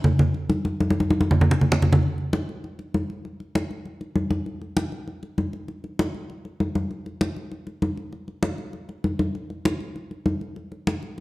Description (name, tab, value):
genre	jazz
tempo	197 BPM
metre	4/4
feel	straight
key	none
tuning	none
part	congas	percussion	0.0-11.2 s	none	-22 LUFS	equal	none
room	wet large studio reverb, RT60 1.3 s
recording	none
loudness	-23 LUFS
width	side -19 dB against mid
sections	0.0-2.0 A section; 2.0-11.2 B section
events	drum fill 0.8-2.0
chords	none